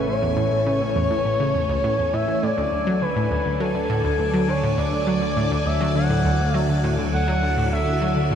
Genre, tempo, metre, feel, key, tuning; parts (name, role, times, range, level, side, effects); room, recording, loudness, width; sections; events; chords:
ambient, sequencer-driven space music; 102 BPM; 4/4; straight; A4 = 440 Hz
expressive portamento lead; melody; 0.0-8.4 s; A4 to F#5; -24 LUFS; left 1 dB; chorus, ping-pong delay
phased string machine; sustained chords; 0.0-8.4 s; E3 to D5; -27 LUFS; equal; ensemble chorus, phaser
analog pluck; riff; 0.0-8.4 s; C#2 to F#3; -24 LUFS; equal; chorus, ping-pong delay
fat analog bass; bass; 0.0-8.4 s; A1 to D2; -26 LUFS; equal
bubbling stepped-filter texture; texture; 0.0-8.4 s; G#5; -34 LUFS; left 2 dB; chorus, built-in reverb
wet huge ambient reverb, RT60 7.2 s; dark, warm production; -19 LUFS; side -8 dB against mid
0.0-8.4 A section
0.0 Amaj7; 2.4 D